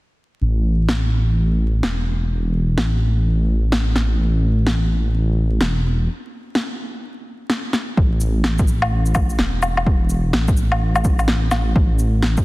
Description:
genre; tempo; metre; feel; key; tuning
future garage; 127 BPM; 4/4; swing 62% on 16ths; unclear; A4 = 440 Hz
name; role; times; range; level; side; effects
dark detuned saw bass; bass; 0.4-12.4 s; E1 to A1; -18 LUFS; equal; sidechain pumping
electronic snare drum, shaker and woodblock; drums; 0.9-12.4 s; none; -23 LUFS; equal; overdrive
electronic kick drum; drums; 8.0-12.4 s; none; -18 LUFS; equal; overdrive
room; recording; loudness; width
light reverb, digital ambience; dense, heavily limited modern master, vinyl crackle; -16 LUFS; side -20 dB against mid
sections
0.4-8.0 A section; 8.0-12.4 B section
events
break 6.1-8.0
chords
none

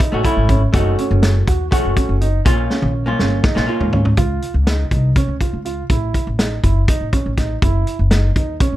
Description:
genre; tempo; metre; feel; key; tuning
progressive instrumental, band music in an uneven meter; 244 BPM (eighths); 7/8; straight; unclear; A4 = 440 Hz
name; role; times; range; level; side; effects
warm grand piano; arpeggios; 0.0-8.8 s; C#4 to Gb4; -24 LUFS; right 5 dB; none
loose indie drum kit; drums; 0.0-8.7 s; hi-hat, kick drum, snare drum, toms; -18 LUFS; equal; none
vintage hollow-body jazz guitar; accompaniment; 0.1-4.1 s; A3 to Gb4; -21 LUFS; left 1 dB; none
upright bass; bass; 0.1-8.8 s; Gb1 to Ab2; -18 LUFS; equal; none
room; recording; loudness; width
light reverb; dark, warm production; -14 LUFS; side -15 dB against mid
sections
0.0-4.2 A section; 4.2-8.8 B section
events
drum fill 2.7-4.2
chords
0.0 A; 0.7 Gbm; 2.5 Bbm; 4.2 Db; 5.9 A5; 7.6 Gb5

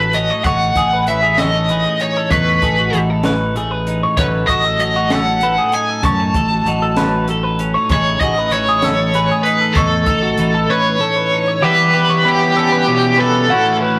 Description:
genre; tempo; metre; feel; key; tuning
math rock and midwest emo; 64 BPM (dotted quarters); 6/8; straight; A lydian; A4 = 441 Hz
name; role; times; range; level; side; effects
biting overdriven guitar; melody; 0.0-13.8 s; G4 to A5; -18 LUFS; equal; tremolo
twelve-string electric guitar; accompaniment; 0.0-14.0 s; A2 to A4; -22 LUFS; equal; none
twelve-string electric guitar; arpeggios; 0.0-14.0 s; F#4 to F#5; -23 LUFS; equal; none
growling fingered electric bass; bass; 0.0-10.7 s; A1 to F#2; -24 LUFS; equal; overdrive
compact cocktail drum kit; drums; 0.1-10.5 s; hi-hat, kick drum, snare drum; -24 LUFS; equal; none
overdriven semi-hollow guitar; riff; 11.6-14.0 s; A2 to E4; -25 LUFS; equal; none
room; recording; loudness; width
moderate stone room reverb, RT60 1.0 s; rough rehearsal-room recording, warm saturation; -15 LUFS; mono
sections
0.0-11.6 A section; 11.6-14.0 B section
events
none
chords
0.5 Amaj9#11; 4.2 B9/A; 7.9 Amaj9#11; 11.6 Em6; 13.5 A6

